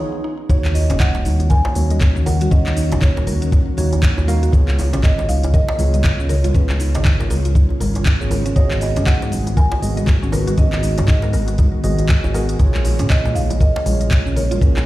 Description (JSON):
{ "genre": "afro house", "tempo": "119 BPM", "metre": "4/4", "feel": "swing 59% on 16ths", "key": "Eb minor", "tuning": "A4 = 440 Hz", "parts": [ { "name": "mallet-like synth pluck", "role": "arpeggios", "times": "0.0-14.8 s", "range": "Bb3 to Eb5", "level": "-30 LUFS", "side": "equal", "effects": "chorus, sidechain pumping, ping-pong delay" }, { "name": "marimba with soft mallets", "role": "melody", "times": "0.5-14.9 s", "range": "Bb4 to Ab5", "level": "-26 LUFS", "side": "right 1 dB", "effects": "ping-pong delay" }, { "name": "ethereal airy pad", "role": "sustained chords", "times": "0.5-14.9 s", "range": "Db3 to Gb4", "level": "-28 LUFS", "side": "left 1 dB", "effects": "ensemble chorus, built-in reverb, sidechain pumping" }, { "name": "mellow tine electric piano", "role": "stabs", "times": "0.5-14.9 s", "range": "Bb3 to Gb5", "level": "-27 LUFS", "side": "right 4 dB", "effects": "vintage 12-bit sampler grit, sidechain pumping, ping-pong delay" }, { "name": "smooth synth bass", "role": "bass", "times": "0.5-14.9 s", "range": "Eb1 to Bb2", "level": "-19 LUFS", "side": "equal", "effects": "sidechain pumping" }, { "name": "afro-pop drum kit", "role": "drums", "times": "0.5-14.8 s", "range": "handclaps, hi-hat, shaker", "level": "-28 LUFS", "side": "equal", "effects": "none" }, { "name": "electronic kick drum", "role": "drums", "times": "0.5-14.7 s", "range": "none", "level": "-14 LUFS", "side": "equal", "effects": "none" }, { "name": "congas", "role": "percussion", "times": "0.5-14.8 s", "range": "none", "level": "-28 LUFS", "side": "left 2 dB", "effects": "none" }, { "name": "djembe", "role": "percussion", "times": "0.7-14.8 s", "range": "none", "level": "-28 LUFS", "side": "right 1 dB", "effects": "none" } ], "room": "digital ambience", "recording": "played on a big sound system in a bare room, stone room reverb", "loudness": "-14 LUFS", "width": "side -16 dB against mid", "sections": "0.5-14.9 A section", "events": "break 0.0-0.5; drop 0.5-14.9", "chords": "0.5 Ebm7; 4.5 Db7; 8.6 Abm7; 12.6 Bbm7" }